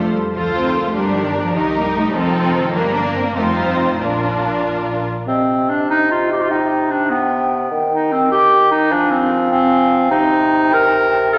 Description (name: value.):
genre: quick classical-period movement for symphony orchestra.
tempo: 99 BPM (dotted quarters).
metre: 6/8.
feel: rubato.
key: Bb major, C minor from 5.3 s.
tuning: A4 = 439 Hz.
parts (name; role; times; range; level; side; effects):
rich chamber violin section; melody; 0.0-5.1 s; A4 to C5; -28 LUFS; equal; none.
warm symphonic violin section; second line; 0.0-4.9 s; Bb3 to F4; -24 LUFS; equal; none.
rich chamber viola section; accompaniment; 0.0-5.1 s; D4 to A4; -24 LUFS; equal; none.
dark chamber double bass section; bass; 0.0-5.0 s; F1 to F2; -29 LUFS; equal; none.
rich chamber cello section; bass; 0.0-4.6 s; Eb3 to D4; -24 LUFS; equal; none.
clear clarinet; second line; 5.3-11.4 s; B3 to Bb4; -17 LUFS; equal; none.
mellow hollow concert flute; second line; 5.3-11.4 s; Eb5 to Ab5; -24 LUFS; equal; none.
warm bassoon; accompaniment; 5.3-11.4 s; C3 to F3; -23 LUFS; equal; none.
room: wet concert hall reverb, RT60 1.9 s.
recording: none.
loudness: -17 LUFS.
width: mono.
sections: 0.0-5.3 A section; 5.3-11.4 B section.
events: none.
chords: 0.3 Dm7; 1.0 Gm; 1.6 Cm7; 2.2 F7; 2.8 Gm; 3.4 F7(no3); 4.0 Bb; 5.3 Cm; 7.7 Eb; 8.9 Fm; 10.1 Cm.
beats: | 0.35 0.96 | 1.56 2.15 | 2.75 3.37 | 4.00 4.64 | 5.28 5.90 | 6.51 7.11 | 7.71 8.32 | 8.92 9.52 | 10.11 10.73 | 11.35.